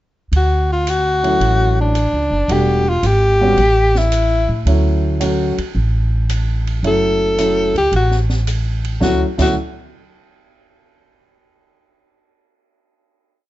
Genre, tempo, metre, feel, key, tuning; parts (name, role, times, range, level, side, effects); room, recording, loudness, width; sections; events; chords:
jazz, small-group swing and bop; 110 BPM; 4/4; swing 69% on 8ths; D major; A4 = 442 Hz
upright bass; bass; 0.3-9.5 s; E1 to A2; -17 LUFS; equal
open jazz drum kit; drums; 0.3-9.5 s; crash cymbal, hi-hat, kick drum, ride cymbal, snare drum; -28 LUFS; right 1 dB
breathy alto saxophone; melody; 0.4-9.6 s; D4 to A4; -16 LUFS; left 1 dB
dark upright piano; accompaniment; 1.2-9.5 s; F#3 to F#4; -20 LUFS; right 1 dB
little or no reverb; nothing above 7.8 kHz; -14 LUFS; side -15 dB against mid
0.3-9.0 A section; 9.0-11.2 final chord
0.3 Dmaj9; 2.5 Em11; 3.6 A5; 4.7 Dmaj9